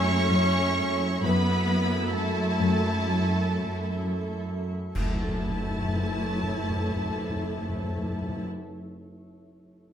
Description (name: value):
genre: cinematic, suspense film score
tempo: 65 BPM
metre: 4/4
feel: straight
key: F# minor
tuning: A4 = 436 Hz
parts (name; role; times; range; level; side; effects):
- rich studio violin section; melody; 0.0-8.4 s; A5 to C#6; -34 LUFS; left 1 dB; none
- rich studio violin section; second line; 0.0-8.5 s; A4 to A5; -36 LUFS; left 1 dB; none
- rich studio viola section; accompaniment; 0.0-8.5 s; A3 to E4; -35 LUFS; equal; none
- dark French horn section; sustained chords; 0.0-8.4 s; A3 to C#4; -35 LUFS; left 1 dB; none
- granular cloud pad; sustained chords; 0.1-8.5 s; A4 to E5; -40 LUFS; right 2 dB; built-in reverb
- rich studio cello section; riff; 0.0-4.8 s; F#2 to F#3; -30 LUFS; left 2 dB; none
- rich studio cello section; bass; 0.0-8.4 s; A3 to C#4; -35 LUFS; right 1 dB; none
- warm studio double bass section; bass; 0.0-8.5 s; F#2; -29 LUFS; right 1 dB; none
- concert harp; texture; 0.0-3.7 s; E6; -44 LUFS; left 10 dB; none
- timpani; percussion; 4.9-8.5 s; F#2; -33 LUFS; equal; none
- clash cymbals and concert bass drum; percussion; 5.0-6.8 s; none; -35 LUFS; equal; none
room: wet stone room reverb, RT60 1.3 s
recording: none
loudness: -24 LUFS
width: side -9 dB against mid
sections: 0.0-5.0 A section; 5.0-8.6 B section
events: band accent 5.0-5.9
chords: 0.0 A/F#; 5.0 F#m7